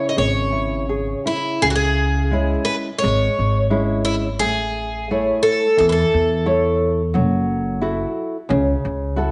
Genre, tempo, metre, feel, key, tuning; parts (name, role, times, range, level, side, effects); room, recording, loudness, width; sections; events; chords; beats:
fado-style ballad; 87 BPM; 4/4; rubato; C# minor; A4 = 440 Hz
picked twelve-string acoustic guitar; melody; 0.0-6.8 s; E4 to D#5; -22 LUFS; equal; slapback echo
nylon-string guitar; accompaniment; 0.0-9.3 s; C#3 to C#5; -25 LUFS; equal
upright bass; bass; 0.2-9.3 s; F#1 to E2; -24 LUFS; equal
moderate echo chamber reverb, RT60 1.8 s, small room ambience; nothing above 11.0 kHz; -19 LUFS; mono
0.0-1.6 A section; 1.6-9.3 B section
0.0 C#m; 4.4 A; 7.1 F#m7
0.17 0.90 | 1.63 2.34 3.04 3.73 | 4.42 5.11 5.78 6.47 | 7.14 7.82 8.50 9.18